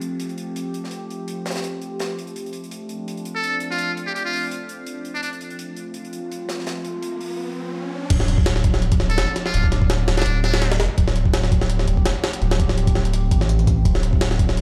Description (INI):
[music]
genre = drum and bass, jungle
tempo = 167 BPM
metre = 4/4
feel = swing 55% on 16ths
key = D minor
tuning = A4 = 440 Hz
[part]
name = warbly tape-like pad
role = sustained chords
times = 0.0-14.6 s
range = F3 to G4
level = -32 LUFS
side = equal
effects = chorus, built-in reverb, phaser
[part]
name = modern studio drum kit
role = drums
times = 0.0-7.3 s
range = hi-hat, snare drum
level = -37 LUFS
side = equal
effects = high-pass filter on hats, high-pass filter on snare, high-pass filter on room
[part]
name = trumpet with metal mute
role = melody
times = 3.4-5.3, 9.1-10.7 s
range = D4 to A4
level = -28 LUFS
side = equal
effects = vintage 12-bit sampler grit, dub echo
[part]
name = riser and sub drop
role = sound effects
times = 6.2-9.5 s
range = none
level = -34 LUFS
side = equal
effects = none
[part]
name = soft dub sub bass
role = bass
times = 8.1-14.6 s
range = D1 to A1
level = -22 LUFS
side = equal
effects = none
[part]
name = jungle sampler-style drum kit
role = drums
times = 8.1-14.6 s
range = crash cymbal, hi-hat, kick drum, snare drum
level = -22 LUFS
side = equal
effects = none
[sound]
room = small room ambience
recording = played on a big sound system in a bare room, stone room reverb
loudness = -22 LUFS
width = mono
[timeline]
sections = 0.0-8.1 A section; 8.1-14.6 B section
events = riser 6.2-8.1; drop 8.1-14.6; impact 8.1-9.5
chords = 0.0 Dm7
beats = 0.20 0.56 | 0.92 1.28 1.64 2.00 | 2.36 2.71 3.08 3.43 | 3.79 4.15 4.51 4.87 | 5.23 5.59 5.95 6.31 | 6.67 7.03 7.39 7.75 | 8.11 8.46 8.82 9.18 | 9.54 9.90 10.26 10.62 | 10.98 11.34 11.70 12.06 | 12.42 12.78 13.13 13.49 | 13.85 14.21 14.57